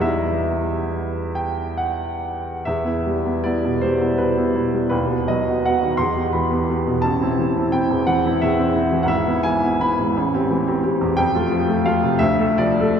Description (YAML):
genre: classical, romantic character piece for solo piano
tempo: 43-59 BPM (dotted quarters)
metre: 6/8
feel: rubato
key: E minor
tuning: A4 = 440 Hz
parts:
  - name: clear upright piano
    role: solo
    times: 0.0-13.0 s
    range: G#1 to C6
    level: -18 LUFS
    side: equal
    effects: none
room: wet cathedral reverb, RT60 4.2 s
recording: recorded in a church or concert hall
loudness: -18 LUFS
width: side -7 dB against mid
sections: 0.0-2.7 A section; 2.7-13.0 B section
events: none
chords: 0.0 Em; 4.9 B/D#; 6.0 Em; 7.0 Am; 9.1 E/G#; 10.1 Am7; 11.2 F; 12.2 Dm